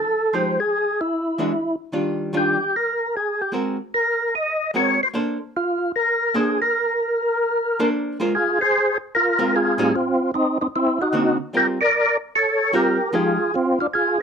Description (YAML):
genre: jazz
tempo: 150 BPM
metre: 4/4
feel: swing 65% on 8ths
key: Bb major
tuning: A4 = 440 Hz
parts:
  - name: percussive tonewheel organ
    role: melody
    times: 0.0-14.2 s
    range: C4 to Eb5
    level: -19 LUFS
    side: equal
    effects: slow rotary speaker, overdrive, chorus vibrato
  - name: archtop guitar, miked and amplified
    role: accompaniment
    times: 0.3-13.4 s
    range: A2 to C5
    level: -22 LUFS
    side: right 1 dB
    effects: none
room: light reverb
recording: close, detailed microphones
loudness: -18 LUFS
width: side -6 dB against mid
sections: 0.0-8.3 A section; 8.3-14.2 B section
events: none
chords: 0.3 Fm9; 1.1 E9; 1.9 Ebmaj9; 3.5 Ab9; 5.1 Bbmaj9; 8.3 Ab69; 9.9 N.C.; 10.7 Daug7; 11.5 Gm11; 13.1 Fm9